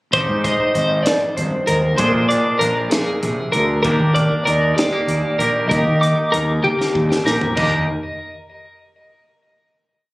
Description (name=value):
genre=math rock and midwest emo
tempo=64 BPM (dotted quarters)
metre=6/8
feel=straight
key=Eb major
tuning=A4 = 440 Hz
part: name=twangy electric guitar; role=accompaniment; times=0.1-7.9 s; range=Eb2 to Ab4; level=-24 LUFS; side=right 2 dB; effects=analog chorus
part: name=twelve-string electric guitar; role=arpeggios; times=0.1-7.9 s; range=G4 to D6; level=-20 LUFS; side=left 1 dB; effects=tremolo, digital delay
part: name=fuzz fingered electric bass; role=bass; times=0.1-7.9 s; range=Ab1 to Eb3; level=-20 LUFS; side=equal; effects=overdrive
part: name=crisp fusion drum kit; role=drums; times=0.1-7.7 s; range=crash cymbal, hi-hat, kick drum, snare drum, toms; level=-24 LUFS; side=equal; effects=none
part: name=electric guitar through a small old amp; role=melody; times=0.4-7.9 s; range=Bb4 to Eb5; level=-22 LUFS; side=equal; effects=lush chorus, digital delay
room=light reverb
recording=recorded on a phone in the room, club reverb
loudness=-15 LUFS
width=side -20 dB against mid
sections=0.1-7.6 A section; 7.6-9.4 final chord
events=drum fill 6.6-7.6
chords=0.1 Abmaj7; 2.0 Bb7; 3.9 Ebmaj7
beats=| 0.13 1.06 | 1.99 2.92 | 3.85 4.78 | 5.71 6.64 | 7.57